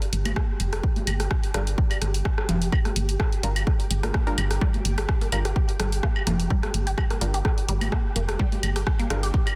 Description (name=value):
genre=minimal techno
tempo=127 BPM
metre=4/4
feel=swing 54% on 16ths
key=G minor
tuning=A4 = 440 Hz
part: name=punchy analog drum machine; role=drums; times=0.0-9.6 s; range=hi-hat, rim click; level=-35 LUFS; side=equal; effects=soft clipping on snare
part: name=flickering grainy texture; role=texture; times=0.1-9.6 s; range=G4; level=-40 LUFS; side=equal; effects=built-in reverb, sidechain pumping
part: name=woody FM bass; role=bass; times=0.1-9.3 s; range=F1 to G1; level=-28 LUFS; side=equal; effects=sidechain pumping
part: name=electronic congas, woodblock and rim click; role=percussion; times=0.3-9.6 s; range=none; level=-33 LUFS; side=equal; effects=soft clipping on snare, digital delay
part: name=electronic kick drum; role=drums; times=0.4-9.4 s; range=none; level=-26 LUFS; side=equal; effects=none
part: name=filtered dub chord stab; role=stabs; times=1.5-9.2 s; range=G3 to Bb4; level=-37 LUFS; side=equal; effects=chorus, cassette tape, digital delay
part: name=resonant blip pluck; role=riff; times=4.6-9.3 s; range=G3 to G4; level=-36 LUFS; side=equal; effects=phaser, sidechain pumping, digital delay
room=little or no reverb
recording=dense, heavily limited modern master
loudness=-25 LUFS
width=mono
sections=0.0-9.6 A section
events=none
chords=0.0 Gm7